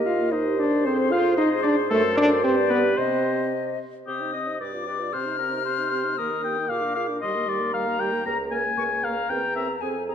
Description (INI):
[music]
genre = quick classical-period movement for wind quintet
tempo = 114 BPM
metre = 2/4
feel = straight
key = C minor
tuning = A4 = 440 Hz
[part]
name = silver concert flute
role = melody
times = 0.0-10.1 s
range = C5 to F6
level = -28 LUFS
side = left 8 dB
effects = none
[part]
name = clear French horn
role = accompaniment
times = 0.0-10.1 s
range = G3 to G4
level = -26 LUFS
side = equal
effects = none
[part]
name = mellow clarinet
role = accompaniment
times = 0.0-10.1 s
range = G4 to Eb5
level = -32 LUFS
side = right 8 dB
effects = none
[part]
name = dark bassoon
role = bass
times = 0.0-10.1 s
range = Db2 to Eb3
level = -28 LUFS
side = right 2 dB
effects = none
[part]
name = warm oboe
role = second line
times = 0.1-9.7 s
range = G4 to Bb5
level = -28 LUFS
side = left 4 dB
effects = none
[sound]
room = wet recital hall reverb, RT60 1.8 s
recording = dark, warm production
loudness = -21 LUFS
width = side -8 dB against mid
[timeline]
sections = 0.0-4.1 A section; 4.1-10.1 B section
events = none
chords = 0.0 Eb; 0.9 Fm; 1.9 D7/F#; 2.4 G; 3.0 Cm; 4.6 G7; 5.1 Cm; 6.2 Eb; 6.7 Bb7; 7.2 Eb; 8.3 Bbm/Db; 9.3 C7/E